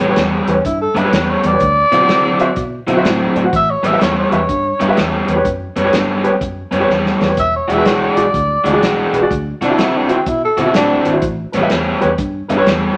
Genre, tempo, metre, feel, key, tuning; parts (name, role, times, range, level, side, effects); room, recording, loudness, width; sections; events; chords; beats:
electric blues shuffle; 125 BPM; 4/4; swing 65% on 8ths; A mixolydian; A4 = 438 Hz
warm upright piano; accompaniment; 0.0-12.7 s; E4 to F#5; -21 LUFS; equal
raw garage guitar; riff; 0.0-13.0 s; A2 to F#4; -19 LUFS; equal; overdrive
fingered electric bass; bass; 0.0-12.9 s; E1 to C3; -26 LUFS; equal
warm soul drum kit; drums; 0.2-12.8 s; hi-hat, kick drum, snare drum; -24 LUFS; equal
growling tenor saxophone; melody; 0.5-11.2 s; C4 to E5; -18 LUFS; equal
wet studio reverb, RT60 0.8 s; -15 LUFS; mono
0.0-13.0 A section
drum fill 6.9-7.4
0.0 A9; 1.6 D9; 3.5 A9; 7.4 E9; 9.3 D9; 11.2 A9
0.17 0.65 1.13 | 1.61 2.09 2.57 3.06 | 3.54 4.01 4.50 4.98 | 5.46 5.94 6.42 6.90 | 7.38 7.86 8.34 8.82 | 9.30 9.79 10.27 10.75 | 11.23 11.71 12.19 12.67